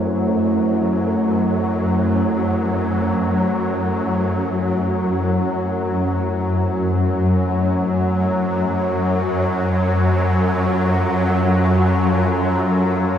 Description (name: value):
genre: dark ambient drone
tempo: free time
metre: none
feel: none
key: unclear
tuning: A4 = 440 Hz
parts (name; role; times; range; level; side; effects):
- deep dark ambient pad; sustained chords; 0.0-13.2 s; A3 to C5; -24 LUFS; right 1 dB; chorus, built-in reverb
- swarming drone; drone; 0.0-13.2 s; F#2 to F#3; -17 LUFS; left 1 dB; built-in reverb
room: wet cathedral reverb, RT60 6.0 s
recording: none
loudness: -16 LUFS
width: side -9 dB against mid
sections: 0.0-13.2 A section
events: fade-out on ambient pad 0.0-13.2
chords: 0.0 Am; 8.7 F